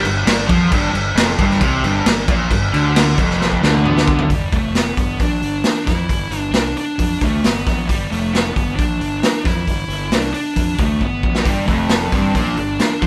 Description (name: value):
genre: hard rock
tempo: 134 BPM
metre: 4/4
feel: straight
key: G mixolydian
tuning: A4 = 440 Hz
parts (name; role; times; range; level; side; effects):
- overdriven semi-hollow guitar; riff; 0.0-4.3, 11.5-13.1 s; F2 to F3; -20 LUFS; equal; none
- fuzz fingered electric bass; bass; 0.0-13.1 s; F1 to F2; -25 LUFS; equal; overdrive
- raw garage drum kit; drums; 0.0-13.1 s; crash cymbal, hi-hat, kick drum, snare drum, toms; -20 LUFS; equal; none
- high-gain lead guitar; melody; 3.6-13.1 s; G3 to E4; -24 LUFS; equal; distortion
room: light reverb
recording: band playing live in one room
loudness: -17 LUFS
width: mono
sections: 0.0-4.3 A section; 4.3-13.1 B section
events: drum fill 3.4-4.3, 11.0-11.5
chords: 0.0 G5; 4.3 G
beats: 0.27 | 0.72 1.17 1.61 2.06 | 2.51 2.95 3.40 3.85 | 4.29 4.74 5.19 5.64 | 6.09 6.54 6.98 7.43 | 7.88 8.33 8.78 9.22 | 9.67 10.12 10.57 11.02 | 11.46 11.91 12.36 12.80